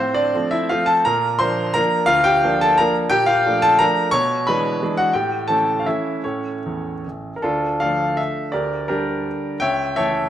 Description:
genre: classical, romantic triple-time dance for piano with dotted rhythms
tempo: 142-190 BPM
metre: 3/4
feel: rubato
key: D minor from 3.1 s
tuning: A4 = 439 Hz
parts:
  - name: clear baby grand piano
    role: solo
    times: 0.0-10.3 s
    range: A1 to C#6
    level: -17 LUFS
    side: equal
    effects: none
room: moderate recital hall reverb, RT60 1.7 s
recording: none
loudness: -17 LUFS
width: side -11 dB against mid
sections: 0.0-7.4 A section; 7.4-10.3 B section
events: none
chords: 0.0 F/A; 1.1 Bb; 2.1 Bb/D; 3.1 Bbmaj7; 4.1 E7/B; 5.1 A7; 6.2 A; 7.4 Dm; 8.5 Gm/D; 9.6 A7/C#

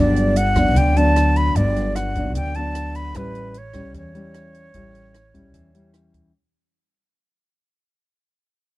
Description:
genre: bossa nova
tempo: 151 BPM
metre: 4/4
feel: straight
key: unclear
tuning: A4 = 438 Hz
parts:
  - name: breathy concert flute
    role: melody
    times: 0.0-5.9 s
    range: B4 to B5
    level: -24 LUFS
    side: left 1 dB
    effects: none
  - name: nylon-string guitar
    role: accompaniment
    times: 0.0-6.3 s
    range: G2 to E4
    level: -22 LUFS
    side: left 1 dB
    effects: none
  - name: upright bass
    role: bass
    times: 0.0-6.3 s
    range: G1 to E2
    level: -21 LUFS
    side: right 1 dB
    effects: none
  - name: compact cocktail drum kit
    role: drums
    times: 0.2-6.2 s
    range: hi-hat, kick drum, rim click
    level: -26 LUFS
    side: equal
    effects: none
room: little or no reverb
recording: dark, warm production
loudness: -17 LUFS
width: side -18 dB against mid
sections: 0.0-6.3 A section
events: fade-out 0.0-6.3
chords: 0.0 Gmaj7; 3.1 A7

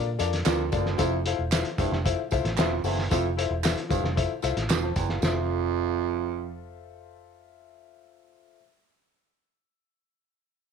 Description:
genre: uptempo 1960s-style soul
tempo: 114 BPM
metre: 4/4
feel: straight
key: F major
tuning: A4 = 440 Hz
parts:
  - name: warm upright piano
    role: accompaniment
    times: 0.0-8.6 s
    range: D4 to A5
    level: -30 LUFS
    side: left 12 dB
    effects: none
  - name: vintage muted fingered electric bass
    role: bass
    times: 0.0-8.6 s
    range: E1 to Bb2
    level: -30 LUFS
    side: right 1 dB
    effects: none
  - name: cloth-damped thuddy drum kit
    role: drums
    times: 0.2-5.3 s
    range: hi-hat, kick drum, snare drum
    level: -28 LUFS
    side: right 1 dB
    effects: none
  - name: tambourine and handclaps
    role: percussion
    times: 0.2-5.5 s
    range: none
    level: -36 LUFS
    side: right 15 dB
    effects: none
  - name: mellow baritone saxophone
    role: riff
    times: 0.5-6.8 s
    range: D2 to G2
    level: -30 LUFS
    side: right 16 dB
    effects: none
room: light reverb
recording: 1960s-style stereo with parts hard left and right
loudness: -24 LUFS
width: side -6 dB against mid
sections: 0.0-5.2 A section; 5.2-9.4 B section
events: none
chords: 0.0 Bbmaj7; 1.0 Fmaj7

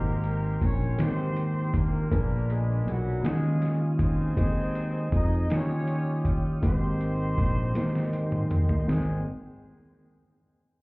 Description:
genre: slow gospel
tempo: 53 BPM (dotted quarters)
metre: 6/8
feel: straight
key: Ab major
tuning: A4 = 438 Hz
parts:
  - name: clear horn section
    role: melody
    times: 0.0-9.2 s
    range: Gb3 to Eb5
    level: -35 LUFS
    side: equal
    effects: slapback echo
  - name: warm baby grand piano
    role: accompaniment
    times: 0.0-9.2 s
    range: Ab1 to G5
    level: -34 LUFS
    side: left 1 dB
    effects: none
  - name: mellow tonewheel organ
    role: sustained chords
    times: 0.0-9.2 s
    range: Bb3 to Eb6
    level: -40 LUFS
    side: right 1 dB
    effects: slow rotary speaker
  - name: modern bright fingered electric bass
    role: bass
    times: 0.0-9.2 s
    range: Ab1 to F2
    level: -27 LUFS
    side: equal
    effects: none
  - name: trip hop sampler-style drum kit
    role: drums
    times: 0.2-9.1 s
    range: hi-hat, kick drum, snare drum, toms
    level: -28 LUFS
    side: equal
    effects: none
room: little or no reverb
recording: heard muffled through a wall, club reverb, EQ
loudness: -24 LUFS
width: side -26 dB against mid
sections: 0.0-8.9 A section; 8.9-10.8 B section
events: drum fill 7.8-8.9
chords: 0.0 Abmaj9; 2.1 Bb7b9; 3.2 Eb9sus4; 4.4 Ab/Eb; 5.5 Eb9; 6.6 Abmaj9

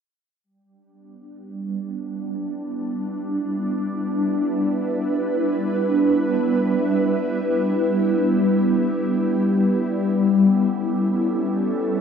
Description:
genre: ambient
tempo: free time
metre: none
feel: none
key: E dorian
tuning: A4 = 440 Hz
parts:
  - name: ethereal airy pad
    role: sustained chords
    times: 1.6-12.0 s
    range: G3 to B4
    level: -19 LUFS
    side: equal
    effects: ensemble chorus, built-in reverb, phaser
room: wet spring reverb, RT60 2.4 s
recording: none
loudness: -19 LUFS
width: side -7 dB against mid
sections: 0.5-12.0 A section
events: none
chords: 0.5 Em7

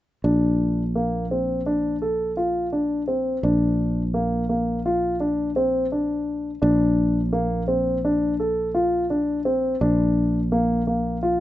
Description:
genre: progressive instrumental, progressive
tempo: 169 BPM (eighths)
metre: 9/8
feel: straight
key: Bb major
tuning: A4 = 440 Hz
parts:
  - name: dark baby grand piano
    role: arpeggios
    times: 0.2-11.4 s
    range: Bb3 to A4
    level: -22 LUFS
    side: equal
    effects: plate reverb
  - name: fretless electric bass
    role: bass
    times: 0.2-11.4 s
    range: Bb1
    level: -25 LUFS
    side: equal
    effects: none
room: moderate small room reverb, RT60 0.5 s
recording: rough home demo mix, nothing above 7.9 kHz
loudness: -20 LUFS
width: side -14 dB against mid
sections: 0.2-11.4 A section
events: none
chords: 0.2 Bbadd9; 9.8 Bb

